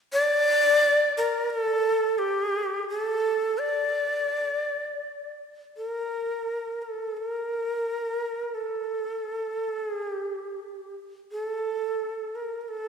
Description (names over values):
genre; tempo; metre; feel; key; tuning
japanese traditional, Japanese chamber music; free time; none; none; unclear; A4 = 439 Hz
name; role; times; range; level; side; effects
breathy bright shakuhachi; solo; 0.1-12.9 s; G4 to D5; -25 LUFS; equal; none
room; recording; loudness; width
wet concert hall reverb, RT60 2.3 s; recorded in a church or concert hall; -24 LUFS; side -6 dB against mid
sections
0.0-5.8 A section; 5.8-12.9 B section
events
none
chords
none